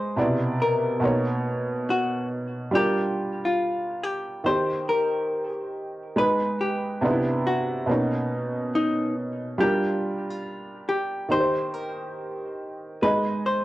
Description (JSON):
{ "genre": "hip hop", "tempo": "70 BPM", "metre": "4/4", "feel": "swing 62% on 16ths", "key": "Eb major", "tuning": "A4 = 440 Hz", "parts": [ { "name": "vintage hollow-body jazz guitar", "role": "melody", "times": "0.0-13.6 s", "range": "D#4 to C5", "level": "-26 LUFS", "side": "left 1 dB", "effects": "none" }, { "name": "felt-muted upright piano", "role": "accompaniment", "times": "0.0-13.6 s", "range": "B2 to Eb5", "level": "-25 LUFS", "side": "right 1 dB", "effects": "cassette tape, plate reverb" } ], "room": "wet studio reverb, RT60 0.6 s", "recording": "home recording on cassette", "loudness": "-23 LUFS", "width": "side -16 dB against mid", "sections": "0.0-13.6 A section", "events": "none", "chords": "0.2 Cmaj9; 1.0 Bmaj9; 2.7 Gm7; 4.5 Eb6; 6.2 Abm; 7.0 Cmaj9; 7.9 Bmaj9; 9.6 Gm7; 11.3 Eb6; 13.0 Abm" }